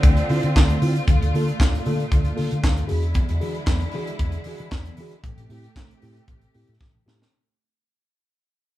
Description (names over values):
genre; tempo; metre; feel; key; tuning
disco; 115 BPM; 4/4; straight; unclear; A4 = 440 Hz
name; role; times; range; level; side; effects
mellow tine electric piano; accompaniment; 0.0-7.2 s; G2 to A4; -30 LUFS; equal; slow stereo tremolo
clear studio string section; sustained chords; 0.0-7.3 s; Bb2 to G4; -30 LUFS; equal; none
hollow-body short-scale fingered electric bass; bass; 0.0-7.2 s; A1 to E3; -24 LUFS; equal; none
tight funk drum kit; drums; 0.0-7.3 s; handclaps, hi-hat, kick drum, snare drum; -20 LUFS; equal; none
room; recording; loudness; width
light reverb; band playing live in one room; -19 LUFS; side -15 dB against mid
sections
0.0-7.3 A section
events
fade-out 0.0-7.3; drum fill 6.8-7.3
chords
0.0 Dm7; 1.1 Gm9/D; 2.9 E7; 5.2 Am7